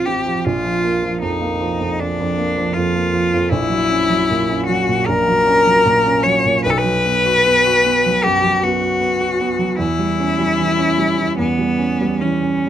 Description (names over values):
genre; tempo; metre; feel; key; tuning
classical, romantic duo for cello and grand piano; 76 BPM; 4/4; rubato; unclear; A4 = 440 Hz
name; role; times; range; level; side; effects
rich cello; melody; 0.0-12.7 s; B3 to C#5; -16 LUFS; left 2 dB; none
warm grand piano; accompaniment; 0.0-12.7 s; A1 to F#4; -19 LUFS; right 3 dB; none
room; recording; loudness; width
little or no reverb; close, detailed microphones; -14 LUFS; side -10 dB against mid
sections
0.0-12.7 A section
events
none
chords
0.4 Bb; 3.5 F#7/A#; 6.6 B5; 9.8 C#dim/E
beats
| 0.45 1.22 1.99 2.75 | 3.50 4.29 5.08 5.86 | 6.64 7.44 8.23 9.01 | 9.80 10.59 11.39 12.22